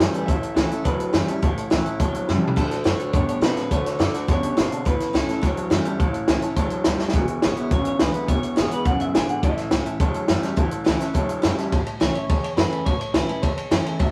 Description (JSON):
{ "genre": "rockabilly", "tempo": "210 BPM", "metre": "4/4", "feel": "straight", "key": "A major", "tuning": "A4 = 438 Hz", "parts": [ { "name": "electric guitar through a small old amp", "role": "melody", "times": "0.0-14.1 s", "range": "A4 to G#5", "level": "-32 LUFS", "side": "equal", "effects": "none" }, { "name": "honky-tonk upright piano", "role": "accompaniment", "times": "0.0-14.1 s", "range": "B4 to C#6", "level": "-37 LUFS", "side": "equal", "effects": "none" }, { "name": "picked steel-string acoustic guitar", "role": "accompaniment", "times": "0.0-14.1 s", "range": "E2 to F#4", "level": "-32 LUFS", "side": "equal", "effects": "none" }, { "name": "electric guitar through a small old amp", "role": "riff", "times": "0.0-11.7 s", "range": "E2 to C4", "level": "-29 LUFS", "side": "equal", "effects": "spring reverb" }, { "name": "upright bass", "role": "bass", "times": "0.0-14.1 s", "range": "E1 to B2", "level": "-30 LUFS", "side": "equal", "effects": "none" }, { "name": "compact cocktail drum kit", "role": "drums", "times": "0.0-14.1 s", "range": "crash cymbal, hi-hat, kick drum, ride cymbal, snare drum, toms", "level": "-25 LUFS", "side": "equal", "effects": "none" } ], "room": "moderate studio reverb, RT60 0.6 s", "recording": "rough rehearsal-room recording, small room ambience", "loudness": "-22 LUFS", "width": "mono", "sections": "0.0-11.7 A section; 11.7-14.1 A section", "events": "drum fill 2.3, 7.0; honky-tonk piano fill 6.3-7.1", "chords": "0.0 A; 2.6 D; 4.9 A; 7.1 E; 9.4 A", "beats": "0.00 | 0.28 0.57 0.86 1.14 | 1.43 1.71 2.00 2.29 | 2.57 2.86 3.14 3.43 | 3.71 4.00 4.29 4.57 | 4.86 5.14 5.43 5.72 | 6.00 6.29 6.57 6.86 | 7.15 7.43 7.72 8.00 | 8.29 8.57 8.86 9.15 | 9.43 9.72 10.01 10.29 | 10.58 10.86 11.15 11.43 | 11.72 12.00 12.29 12.57 | 12.86 13.14 13.43 13.71 | 14.00" }